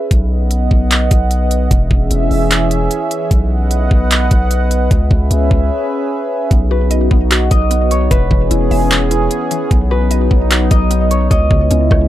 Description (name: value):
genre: hip hop, atmospheric cloud-rap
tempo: 150 BPM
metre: 4/4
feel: half-time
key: B major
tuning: A4 = 442 Hz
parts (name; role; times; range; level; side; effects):
- sweeping resonant pad; sustained chords; 0.0-12.1 s; C#3 to F#5; -18 LUFS; equal; chorus, sidechain pumping
- long sustained 808-style bass; bass; 0.1-12.1 s; E1 to C#2; -14 LUFS; equal; none
- trap drum kit; drums; 0.1-12.0 s; handclaps, hi-hat, kick drum, rim click; -14 LUFS; equal; none
- mallet-like synth pluck; arpeggios; 6.5-12.1 s; C#3 to E5; -25 LUFS; left 2 dB; chorus, digital delay
- concert harp; melody; 6.7-12.1 s; B4 to D#5; -20 LUFS; equal; digital delay
room: light reverb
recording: none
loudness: -11 LUFS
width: side -13 dB against mid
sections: 0.0-6.5 A section; 6.5-12.1 B section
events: break 5.7-6.5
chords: 0.1 B; 1.7 E6; 3.3 B; 4.9 C#m7; 6.5 B; 8.1 E6; 9.7 B; 11.3 C#m7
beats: | 0.11 0.51 0.91 1.31 | 1.71 2.11 2.51 2.91 | 3.31 3.71 4.11 4.51 | 4.91 5.31 5.71 6.11 | 6.51 6.91 7.31 7.71 | 8.11 8.51 8.91 9.31 | 9.71 10.11 10.51 10.91 | 11.31 11.71